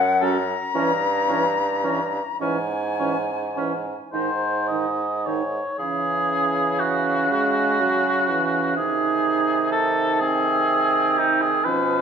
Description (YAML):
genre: classical, slow romantic movement for wind quintet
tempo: 34-42 BPM (dotted quarters)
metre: 6/8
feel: rubato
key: C# minor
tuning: A4 = 443 Hz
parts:
  - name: mellow silver concert flute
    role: melody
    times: 0.0-12.0 s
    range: E5 to A#5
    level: -27 LUFS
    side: left 6 dB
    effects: none
  - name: warm bassoon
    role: bass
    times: 0.0-12.0 s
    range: F#2 to C#3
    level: -27 LUFS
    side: right 3 dB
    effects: none
  - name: mellow oboe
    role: second line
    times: 0.2-12.0 s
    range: D#4 to D#5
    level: -23 LUFS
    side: left 1 dB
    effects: none
  - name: warm French horn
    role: accompaniment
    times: 0.2-12.0 s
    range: D#3 to G#3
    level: -30 LUFS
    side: right 2 dB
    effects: none
  - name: warm clarinet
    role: accompaniment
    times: 0.2-12.0 s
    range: B#3 to D#4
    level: -27 LUFS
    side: right 7 dB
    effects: none
room: wet recital hall reverb, RT60 1.8 s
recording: minimal, uncompressed stereo recording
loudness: -19 LUFS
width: side -7 dB against mid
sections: 0.0-5.8 A section; 5.8-12.0 B section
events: none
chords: 0.0 F#m; 0.8 Gdim7; 2.4 C#m/G#; 4.1 G#; 5.8 C#m; 8.8 G#/B#